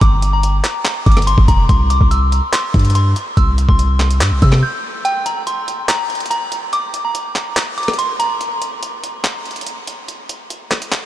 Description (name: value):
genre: hip hop, trap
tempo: 143 BPM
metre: 4/4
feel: half-time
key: unclear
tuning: A4 = 440 Hz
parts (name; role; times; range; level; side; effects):
- delicate synth tine bell; melody; 0.0-8.4 s; G5 to G6; -20 LUFS; equal; chorus, low-pass filter, tape echo
- long sustained 808-style bass; bass; 0.0-4.6 s; F1 to C3; -14 LUFS; equal; none
- breakbeat sampler-style drum kit; drums; 0.0-11.0 s; handclaps, hi-hat, kick drum, rim click; -17 LUFS; equal; vintage 12-bit sampler grit
room: light reverb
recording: none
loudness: -14 LUFS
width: side -13 dB against mid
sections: 0.0-5.0 A section; 5.0-11.1 B section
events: break 4.6-5.0, 5.0-11.1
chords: 0.0 Gm; 1.7 C; 5.0 N.C.